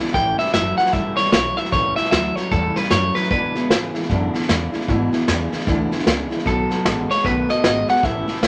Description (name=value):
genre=rockabilly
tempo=152 BPM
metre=4/4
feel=swing 62% on 8ths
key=E mixolydian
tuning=A4 = 440 Hz
part: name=picked steel-string acoustic guitar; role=accompaniment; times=0.0-8.5 s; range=E2 to F#4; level=-29 LUFS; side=equal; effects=none
part: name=electric guitar through a small old amp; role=riff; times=0.0-8.5 s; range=E2 to A3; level=-28 LUFS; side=equal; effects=spring reverb
part: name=electric guitar at the edge of break-up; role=melody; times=0.1-3.9, 6.5-8.5 s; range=A4 to G5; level=-22 LUFS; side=equal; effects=none
part: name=upright bass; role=bass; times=0.1-8.5 s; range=F#1 to G#2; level=-29 LUFS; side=equal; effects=none
part: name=vintage brush drum kit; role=drums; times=0.1-8.5 s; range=hi-hat, kick drum, snare drum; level=-24 LUFS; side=equal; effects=none
room=moderate studio reverb, RT60 0.6 s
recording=none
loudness=-19 LUFS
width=mono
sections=0.0-8.5 A section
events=none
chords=0.1 A7; 3.3 E7; 6.5 B7